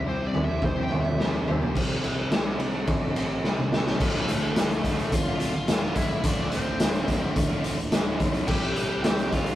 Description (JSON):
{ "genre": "quiet-loud alternative rock", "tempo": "107 BPM", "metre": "4/4", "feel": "straight", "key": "D minor", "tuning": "A4 = 440 Hz", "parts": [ { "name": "clean electric guitar", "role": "arpeggios", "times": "0.0-1.7 s", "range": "C3 to C5", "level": "-33 LUFS", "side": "left 4 dB", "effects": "tremolo" }, { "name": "distorted electric guitar", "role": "riff", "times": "0.0-9.6 s", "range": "D2 to C5", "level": "-37 LUFS", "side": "left 4 dB", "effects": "overdrive" }, { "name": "fuzz guitar", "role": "riff", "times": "0.0-9.6 s", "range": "D2 to C5", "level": "-34 LUFS", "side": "right 3 dB", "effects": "distortion" }, { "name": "fuzz picked electric bass", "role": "bass", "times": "0.0-9.6 s", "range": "D1 to D2", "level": "-33 LUFS", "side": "equal", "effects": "overdrive" }, { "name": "high-gain lead guitar", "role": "melody", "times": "0.1-9.6 s", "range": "A3 to G5", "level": "-31 LUFS", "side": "left 1 dB", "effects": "distortion" }, { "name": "raw garage drum kit", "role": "drums", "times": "0.3-9.6 s", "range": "crash cymbal, hi-hat, kick drum, ride cymbal, snare drum, toms", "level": "-25 LUFS", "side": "equal", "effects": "none" }, { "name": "distorted electric guitar", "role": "riff", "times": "4.0-9.6 s", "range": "D2 to C4", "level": "-37 LUFS", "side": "equal", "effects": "none" } ], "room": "light reverb", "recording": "rough rehearsal-room recording, warm saturation", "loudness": "-23 LUFS", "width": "side -13 dB against mid", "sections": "0.0-1.8 A section; 1.8-4.0 B section; 4.0-9.6 C section", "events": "lead electric guitar solo 0.0-1.8; drum fill 3.4-4.0", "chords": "0.0 C; 1.8 C5; 4.0 Dm7; 8.5 C" }